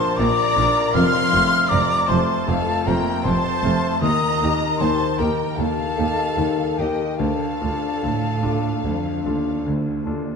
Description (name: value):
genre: cinematic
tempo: 72-79 BPM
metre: 4/4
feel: rubato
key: unclear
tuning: A4 = 440 Hz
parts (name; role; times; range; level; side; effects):
- rich studio violin section; melody; 0.0-9.6 s; Eb5 to C6; -30 LUFS; left 2 dB; none
- bright silver concert flute; second line; 0.0-9.7 s; G5 to F6; -24 LUFS; left 2 dB; none
- rich studio violin section; second line; 0.0-9.6 s; Eb5 to C6; -30 LUFS; left 5 dB; none
- bright grand piano; accompaniment; 0.0-10.4 s; F1 to A4; -24 LUFS; left 2 dB; none
- rich studio viola section; accompaniment; 0.0-9.6 s; Bb3 to F5; -29 LUFS; right 2 dB; none
- concert harp; arpeggios; 0.0-10.4 s; Bb2 to F6; -28 LUFS; left 6 dB; none
- rich studio cello section; bass; 0.2-10.4 s; D2 to Bb2; -26 LUFS; right 4 dB; none
- rich studio double bass section; bass; 0.2-10.1 s; F1 to Eb2; -28 LUFS; right 5 dB; none
room: moderate scoring stage reverb, RT60 1.7 s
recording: dark, warm production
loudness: -18 LUFS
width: side -5 dB against mid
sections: 0.0-10.4 A section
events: none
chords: 0.0 Bb; 0.9 F; 4.0 Eb; 7.2 Dm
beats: 0.18 | 0.94 1.71 2.48 3.25 | 4.03 4.80 5.58 6.38 | 7.20 8.03 8.85 9.66